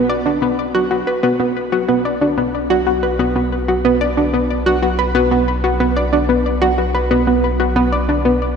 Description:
ambient, sequencer-driven space music; 92 BPM; 4/4; straight; B minor; A4 = 442 Hz
analog pluck; riff; 0.0-8.3 s; B3 to D5; -15 LUFS; equal; chorus, ping-pong delay, shimmer reverb
round analog bass; bass; 0.0-8.6 s; B1; -23 LUFS; equal; tube saturation
wet lush hall reverb, RT60 3.0 s; dreamy mix soaked in reverb, cassette tape; -14 LUFS; side -6 dB against mid
0.0-8.6 A section
0.0 Bm

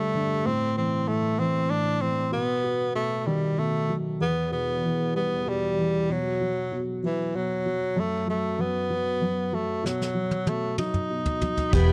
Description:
six-eight pop ballad; 64 BPM (dotted quarters); 6/8; straight; A4 = 439 Hz
clear tenor saxophone; melody; 0.0-11.9 s; E3 to D#4; -29 LUFS; equal; tape echo
dark upright piano; accompaniment; 0.0-11.9 s; E2 to F#4; -30 LUFS; equal
soft brush drum kit; drums; 9.9-11.9 s; crash cymbal, kick drum, snare drum, toms; -30 LUFS; equal
vibraphone with medium hard mallets; second line; 11.7-11.9 s; G4; -28 LUFS; equal
clear studio string section; sustained chords; 11.7-11.9 s; E4 to B5; -35 LUFS; equal
vintage muted fingered electric bass; bass; 11.7-11.9 s; E1; -21 LUFS; equal
little or no reverb; dry, close 1970s-style studio recording, tape saturation; -26 LUFS; mono
0.0-11.7 A section
drum fill 9.8-11.7
0.5 A5; 2.3 B; 4.2 Em; 6.1 B5; 8.0 N.C.; 9.8 B

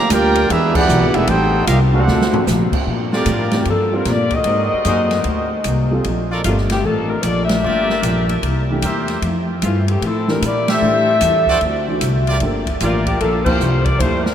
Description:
jazz, big band swing; 151 BPM; 4/4; swing 65% on 8ths; G dorian; A4 = 439 Hz
clear trumpet section; melody; 0.0-2.4 s; D4 to G5; -21 LUFS; right 2 dB
muted trombone section; second line; 0.0-2.4 s; G#3 to G4; -23 LUFS; right 2 dB
fingerpicked steel-string acoustic guitar; accompaniment; 0.1-14.3 s; G2 to Bb4; -25 LUFS; left 3 dB
upright bass; bass; 0.1-14.3 s; E1 to Bb2; -19 LUFS; equal
open jazz drum kit; drums; 0.1-14.3 s; crash cymbal, hi-hat, kick drum, ride cymbal, snare drum, toms; -23 LUFS; equal
dark trombone section; sustained chords; 0.7-2.4 s; barely audible
warm upright piano; accompaniment; 3.1-14.2 s; E3 to C5; -26 LUFS; right 1 dB
bright trumpet section; stabs; 3.1-13.4 s; F4 to E5; -26 LUFS; right 1 dB
dark saxophone section; melody; 3.3-14.3 s; E3 to E5; -19 LUFS; left 2 dB
wet huge ambient reverb, RT60 8.2 s; in a vast, echoing space; -14 LUFS; side -9 dB against mid
0.0-2.9 A section; 2.9-14.3 B section
band accent 0.7, 7.4, 10.6, 13.4; drum fill 2.1-2.5
0.0 Gm7; 0.5 E7; 1.3 Am7b5; 2.1 D7b13; 2.9 Gm7; 4.5 Ab9; 6.1 Bbmaj7; 7.6 Gm7; 8.4 C7; 9.2 Fmaj7; 10.8 Am7; 11.6 D7; 12.4 Gm7

